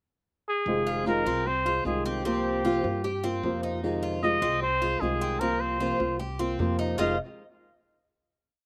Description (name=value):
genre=latin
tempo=152 BPM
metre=4/4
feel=straight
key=F minor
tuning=A4 = 437 Hz
part: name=breathy trumpet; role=melody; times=0.5-7.2 s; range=G4 to F5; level=-30 LUFS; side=equal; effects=none
part: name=flamenco guitar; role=accompaniment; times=0.7-7.2 s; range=F2 to F4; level=-31 LUFS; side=equal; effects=none
part: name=upright bass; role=bass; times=0.7-7.2 s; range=F1 to G2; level=-37 LUFS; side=equal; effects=none
part: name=Cuban tres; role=arpeggios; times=0.9-7.2 s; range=C4 to Eb5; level=-37 LUFS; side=equal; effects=none
room=little or no reverb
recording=recorded outdoors, with no room sound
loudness=-28 LUFS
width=mono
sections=0.0-0.7 pickup bar; 0.7-7.0 montuno (vamp); 7.0-8.6 final chord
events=none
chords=0.0 N.C.; 0.7 Fm7; 2.3 C7sus4; 3.8 Fm7; 5.4 C7sus4; 7.0 F7(no3)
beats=0.27 | 0.67 1.06 1.46 1.85 | 2.25 2.65 3.04 3.44 | 3.83 4.22 4.62 5.01 | 5.41 5.80 6.20 6.59 | 6.99